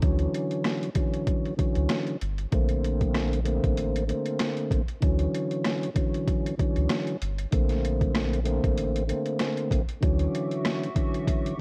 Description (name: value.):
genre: hip hop, boom-bap hip-hop.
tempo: 96 BPM.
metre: 4/4.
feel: swing 56% on 16ths.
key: D major.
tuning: A4 = 441 Hz.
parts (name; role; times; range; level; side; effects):
mellow tonewheel organ; accompaniment; 0.0-11.6 s; D3 to C#4; -31 LUFS; equal; overdrive, chorus vibrato, slow rotary speaker, cassette tape, high-pass filter, low-pass filter.
soft dub sub bass; bass; 0.0-10.3 s; G1 to D2; -30 LUFS; equal; none.
boom bap sampler-style drum kit; drums; 0.0-11.6 s; hi-hat, kick drum, rim click, snare drum; -30 LUFS; equal; overdrive.
hollow soft pad; sustained chords; 10.2-11.6 s; F#4 to D6; -42 LUFS; equal; ensemble chorus, high-pass filter, low-pass filter.
room: little or no reverb.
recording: worn, warbling old tape, cassette tape, warbly pitch drift.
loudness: -27 LUFS.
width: mono.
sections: 0.0-11.6 A section.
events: none.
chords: 0.0 Dmaj9; 2.5 Bbmaj9; 5.0 Dmaj9; 7.5 Bbmaj9; 10.0 Dmaj9.